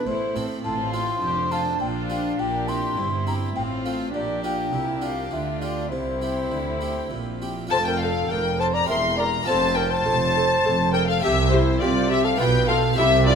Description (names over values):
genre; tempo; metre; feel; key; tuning
classical, baroque-style concerto movement with solo episodes; 103 BPM; 3/4; straight; F major; A4 = 440 Hz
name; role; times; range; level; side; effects
mellow baroque flute; melody; 0.0-13.4 s; E4 to C6; -26 LUFS; left 1 dB; none
warm chamber violin section; melody; 0.0-13.4 s; G4 to C6; -29 LUFS; left 6 dB; none
rich chamber violin section; second line; 0.0-13.4 s; C4 to C6; -27 LUFS; left 4 dB; none
harpsichord; accompaniment; 0.0-13.4 s; E2 to Bb4; -32 LUFS; left 1 dB; none
warm chamber viola section; accompaniment; 0.0-13.3 s; A3 to Bb4; -31 LUFS; right 1 dB; none
dark chamber cello section; bass; 0.1-13.4 s; E2 to D3; -29 LUFS; right 5 dB; none
rich chamber double bass section; bass; 0.1-13.4 s; E1 to D2; -28 LUFS; right 3 dB; none
room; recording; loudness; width
moderate scoring stage reverb, RT60 1.8 s; none; -20 LUFS; side -6 dB against mid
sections
0.0-7.7 A section; 7.7-13.4 B section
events
none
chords
0.1 Am; 0.6 F/A; 1.8 Gm7/Bb; 2.4 C7/Bb; 3.6 F/A; 4.1 Gm7/Bb; 5.9 C; 7.7 F; 8.9 C7/E; 9.5 F; 11.2 C5; 12.4 G7/B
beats
0.06 | 0.64 1.22 1.81 | 2.39 2.97 3.56 | 4.14 4.72 5.31 | 5.91 6.52 7.12 | 7.72 8.31 8.90 | 9.48 10.07 10.65 | 11.23 11.82 12.40 | 12.98